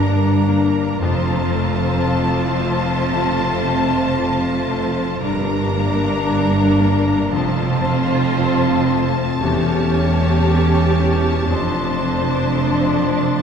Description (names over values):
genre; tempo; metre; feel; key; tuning
cinematic; 57 BPM; 4/4; rubato; unclear; A4 = 441 Hz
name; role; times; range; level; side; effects
warm studio violin section; melody; 0.0-13.4 s; A5 to Bb5; -28 LUFS; left 2 dB; none
dark clarinet; second line; 0.0-13.4 s; C4 to D4; -27 LUFS; equal; none
rich studio violin section; second line; 0.0-13.4 s; Bb4 to C#5; -28 LUFS; left 3 dB; none
small flute group; second line; 0.0-13.4 s; A5 to C6; -29 LUFS; left 4 dB; none
clear concert grand piano; accompaniment; 0.0-13.4 s; E2 to G4; -25 LUFS; left 2 dB; none
warm studio viola section; accompaniment; 0.0-13.4 s; D4 to G4; -26 LUFS; right 3 dB; none
dark French horn section; sustained chords; 0.0-13.4 s; A3 to D4; -24 LUFS; left 1 dB; none
concert harp; arpeggios; 0.0-13.4 s; E2 to C5; -26 LUFS; left 4 dB; none
rich studio cello section; bass; 0.0-13.4 s; E2 to G2; -23 LUFS; right 2 dB; none
rich studio double bass section; bass; 0.0-13.4 s; E1 to G1; -22 LUFS; right 2 dB; none
room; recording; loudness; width
wet concert hall reverb, RT60 2.2 s; heard from further back in the room; -15 LUFS; side -7 dB against mid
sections
0.0-13.4 A section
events
none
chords
0.0 Gm; 1.0 F; 5.2 Gm; 7.3 F; 9.4 A7/E; 11.5 Dm7/F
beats
| 1.00 2.06 3.12 4.18 | 5.24 6.28 7.33 8.37 | 9.41 10.45 11.49 12.54